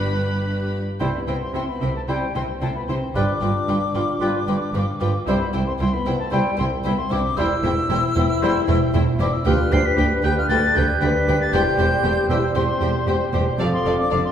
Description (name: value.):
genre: quick classical-period movement for symphony orchestra.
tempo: 114 BPM.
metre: 4/4.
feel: rubato.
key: C major.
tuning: A4 = 441 Hz.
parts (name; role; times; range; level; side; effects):
rich chamber violin section; melody; 0.0-14.2 s; F5 to B5; -32 LUFS; left 5 dB; none.
warm chamber violin section; second line; 0.0-14.2 s; G4 to D5; -31 LUFS; left 3 dB; none.
warm oboe; second line; 0.0-14.3 s; B4 to D5; -31 LUFS; right 3 dB; none.
warm chamber viola section; accompaniment; 0.0-14.2 s; D4 to A4; -31 LUFS; equal; none.
clear chamber cello section; bass; 0.0-14.2 s; C2 to C3; -24 LUFS; right 1 dB; none.
clear chamber double bass section; bass; 0.0-14.2 s; E1 to D2; -25 LUFS; right 2 dB; none.
warm clarinet; second line; 1.0-14.3 s; E4 to A4; -31 LUFS; left 2 dB; none.
mellow bassoon; accompaniment; 1.0-14.3 s; F3 to G3; -29 LUFS; right 3 dB; none.
bright silver concert flute; second line; 1.1-14.3 s; G5 to C7; -26 LUFS; left 2 dB; none.
mellow French horn section; sustained chords; 1.1-14.3 s; G3 to C5; -27 LUFS; left 4 dB; none.
room: wet recital hall reverb, RT60 1.6 s.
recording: recorded in a church or concert hall.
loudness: -18 LUFS.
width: side -9 dB against mid.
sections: 0.0-1.0 A section; 1.0-14.3 B section.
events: none.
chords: 0.0 G; 1.0 C; 3.2 G7; 5.3 C; 7.4 C/E; 9.5 G/D; 11.5 C/E; 13.6 Dm7/F.